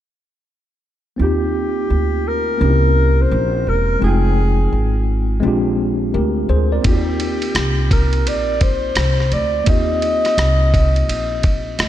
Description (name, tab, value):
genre	hip hop, jazz-hop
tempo	85 BPM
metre	4/4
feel	swing 64% on 16ths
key	Eb major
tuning	A4 = 442 Hz
part	dark alto saxophone	melody	1.2-11.8 s	G4 to Eb5	-21 LUFS	equal	tape echo
part	tine electric piano	accompaniment	1.2-11.9 s	Ab3 to G5	-22 LUFS	left 1 dB	overdrive, fast stereo tremolo
part	upright bass	bass	1.2-11.9 s	E1 to Eb2	-18 LUFS	equal	none
part	dusty soul sampler-style drum kit	drums	6.8-11.9 s	hi-hat, kick drum, ride cymbal, rim click	-19 LUFS	equal	none
room	light reverb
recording	none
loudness	-14 LUFS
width	side -12 dB against mid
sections	1.2-11.9 A section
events	tine electric piano fill 11.4-11.9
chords	1.2 Eb6; 2.6 C7b9; 4.0 Fm7; 5.4 Bb13; 6.8 Eb6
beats	| 1.20 1.91 2.62 3.32 | 4.03 4.73 5.44 6.14 | 6.85 7.56 8.26 8.97 | 9.67 10.38 11.09 11.79